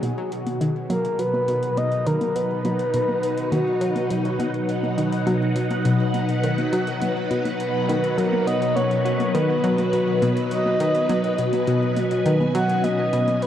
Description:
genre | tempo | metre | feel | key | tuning
ambient, sequencer-driven space music | 103 BPM | 4/4 | straight | B major | A4 = 440 Hz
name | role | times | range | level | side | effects
phased string machine | sustained chords | 0.0-13.5 s | B2 to G#5 | -24 LUFS | equal | ensemble chorus, phaser
analog pluck | riff | 0.0-13.4 s | B2 to F#4 | -26 LUFS | left 1 dB | chorus, ping-pong delay
electronic hi-hat and congas | percussion | 0.0-13.5 s | none | -33 LUFS | left 1 dB | ping-pong delay
pulsing gated texture | texture | 4.5-13.5 s | D#5 | -41 LUFS | right 5 dB | none
breathy flute-like synth lead | melody | 0.9-13.5 s | F#4 to F#5 | -25 LUFS | equal | chorus, ping-pong delay
vibraphone with medium hard mallets | arpeggios | 9.3-13.5 s | B3 to B4 | -26 LUFS | equal | auto-pan, ping-pong delay
room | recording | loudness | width
wet huge ambient reverb, RT60 8.8 s | worn, warbling old tape, cassette tape, warbly pitch drift | -20 LUFS | side -10 dB against mid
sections
0.0-13.5 A section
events
fade-out 12.5-13.5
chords
0.0 B

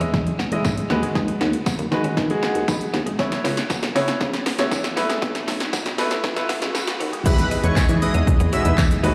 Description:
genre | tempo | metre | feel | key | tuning
dance-pop | 118 BPM | 4/4 | straight | E major | A4 = 440 Hz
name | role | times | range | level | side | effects
clear baby grand piano | accompaniment | 0.0-9.1 s | G#3 to B5 | -28 LUFS | equal | sidechain pumping
twelve-string electric guitar | riff | 0.0-9.1 s | G#3 to E4 | -34 LUFS | equal | subtle chorus
chorused synth bass | bass | 0.0-9.1 s | E1 to E3 | -26 LUFS | equal | sidechain pumping
punchy analog drum machine | drums | 0.0-9.1 s | crash cymbal, handclaps, hi-hat, kick drum, shaker, snare drum | -25 LUFS | equal | overdrive
riser | sound effects | 2.9-7.3 s | none | -38 LUFS | equal | none
tambourine | percussion | 0.6-8.9 s | none | -40 LUFS | equal | none
airy dreamy lead | melody | 7.3-8.7 s | B4 to E5 | -29 LUFS | equal | chorus, digital delay
soft supersaw | sustained chords | 7.3-9.1 s | B2 to D#5 | -29 LUFS | equal | sidechain pumping
room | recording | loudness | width
light reverb | played on a big sound system in a bare room, large studio reverb, high-pass filter | -21 LUFS | mono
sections
0.0-7.3 A section; 7.3-9.1 B section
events
build-up 0.0-7.3; drum fill 0.0-7.3; filter sweep 0.0-7.3; grand piano fill 2.2-3.2; drop 7.3-9.1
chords
0.0 Emaj7; 0.9 G#m7/D#; 3.2 C#m7; 5.0 B7sus4; 7.3 Emaj7

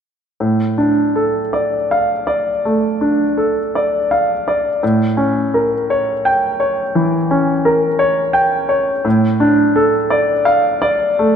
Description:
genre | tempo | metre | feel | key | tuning
classical | 56 BPM (dotted quarters) | 12/8 | rubato | D minor | A4 = 440 Hz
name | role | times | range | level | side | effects
clear grand piano | melody | 0.4-11.4 s | A2 to G5 | -13 LUFS | equal | none
room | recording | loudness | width
moderate concert hall reverb, RT60 2.1 s | minimal, uncompressed stereo recording | -13 LUFS | side -7 dB against mid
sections
0.4-11.4 A section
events
none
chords
0.4 Dm/A; 4.8 A7b9; 9.0 Dm/A

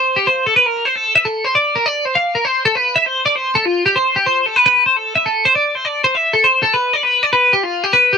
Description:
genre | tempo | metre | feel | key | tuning
rock | 150 BPM | 5/4 | straight | C major | A4 = 440 Hz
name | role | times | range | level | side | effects
twelve-string electric guitar | solo | 0.0-8.2 s | F4 to F5 | -12 LUFS | left 1 dB | lush chorus, digital delay
room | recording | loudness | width
light reverb | none | -12 LUFS | side -6 dB against mid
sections
0.0-8.2 A section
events
none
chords
none

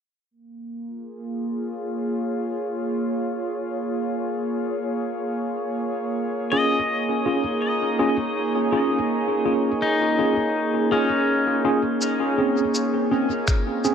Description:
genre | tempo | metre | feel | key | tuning
ambient dub | 82 BPM | 4/4 | swing 56% on 16ths | Bb minor | A4 = 441 Hz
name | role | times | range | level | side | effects
warbly tape-like pad | sustained chords | 0.5-13.9 s | Bb3 to Db5 | -24 LUFS | right 1 dB | chorus, built-in reverb
pedal steel guitar | arpeggios | 6.5-13.0 s | Db4 to Eb5 | -25 LUFS | left 3 dB | dub echo
tine electric piano | stabs | 6.5-13.9 s | C4 to Ab4 | -24 LUFS | equal | overdrive, fast stereo tremolo, dub echo
electronic cabasa and finger snaps | drums | 12.0-13.9 s | none | -30 LUFS | left 1 dB | dub echo
electronic kick drum | drums | 13.5-13.6 s | none | -21 LUFS | left 1 dB | none
room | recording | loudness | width
light reverb | echo-heavy mix | -21 LUFS | side -7 dB against mid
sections
0.3-12.0 A section; 12.0-13.9 B section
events
none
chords
0.3 Bbm7; 6.2 Eb7sus4/Bb; 12.0 Bbm7

